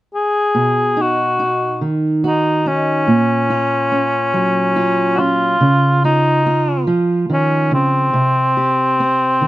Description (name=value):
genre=folk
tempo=71 BPM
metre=3/4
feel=straight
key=unclear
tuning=A4 = 440 Hz
part: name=mellow cor anglais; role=melody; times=0.1-9.5 s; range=C4 to Ab4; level=-15 LUFS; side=left 1 dB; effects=none
part: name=fingerpicked steel-string acoustic guitar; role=accompaniment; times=0.5-9.5 s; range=Bb2 to G4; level=-17 LUFS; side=right 2 dB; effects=none
room=little or no reverb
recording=close, detailed microphones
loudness=-13 LUFS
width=side -16 dB against mid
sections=0.5-9.5 A section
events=none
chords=0.0 N.C.; 0.5 B; 3.1 Gbmaj7/Bb; 5.6 Db; 8.1 C5